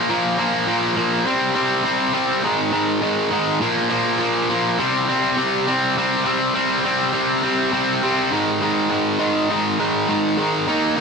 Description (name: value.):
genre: punk.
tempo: 204 BPM.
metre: 4/4.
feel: straight.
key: C minor.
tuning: A4 = 440 Hz.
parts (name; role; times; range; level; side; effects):
distorted electric guitar; solo; 0.0-11.0 s; Ab2 to Eb4; -17 LUFS; equal; overdrive, tape echo.
room: light reverb.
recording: none.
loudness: -17 LUFS.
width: side -5 dB against mid.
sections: 0.0-6.0 A section; 6.0-8.3 B section; 8.3-11.0 C section.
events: none.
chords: 0.0 Bb5; 1.3 C5; 2.4 Ab5; 3.6 Bb5; 4.8 C5; 8.3 Ab5.